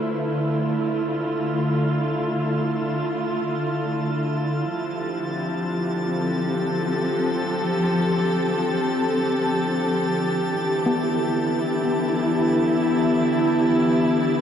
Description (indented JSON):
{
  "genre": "ambient",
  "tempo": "free time",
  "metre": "none",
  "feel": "none",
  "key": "unclear",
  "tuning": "A4 = 441 Hz",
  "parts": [
    { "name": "dark studio string section", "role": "sustained chords", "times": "0.0-14.4 s", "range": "D3 to C5", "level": "-21 LUFS", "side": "equal", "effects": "shimmer reverb" },
    { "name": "organ-like drone", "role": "drone", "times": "1.0-14.4 s", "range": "D3 to D4", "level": "-33 LUFS", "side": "left 1 dB", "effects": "ensemble chorus, built-in reverb" },
    { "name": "drifting glass-harmonics texture", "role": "texture", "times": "0.2-14.4 s", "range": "A5 to A6", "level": "-35 LUFS", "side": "left 3 dB", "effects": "chorus, built-in reverb, shimmer reverb" },
    { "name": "soft round pluck", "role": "arpeggios", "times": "10.9-13.4 s", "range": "B3", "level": "-31 LUFS", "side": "left 2 dB", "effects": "none" }
  ],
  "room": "wet huge ambient reverb, RT60 8.1 s",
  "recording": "dark, warm production",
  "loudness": "-20 LUFS",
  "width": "side -8 dB against mid",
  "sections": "0.0-14.4 A section",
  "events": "fade-in on synth drone 0.0-14.4; fade-in on synth texture 0.0-14.4",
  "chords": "0.0 Dmadd9; 4.7 Fmaj9; 10.6 Em7"
}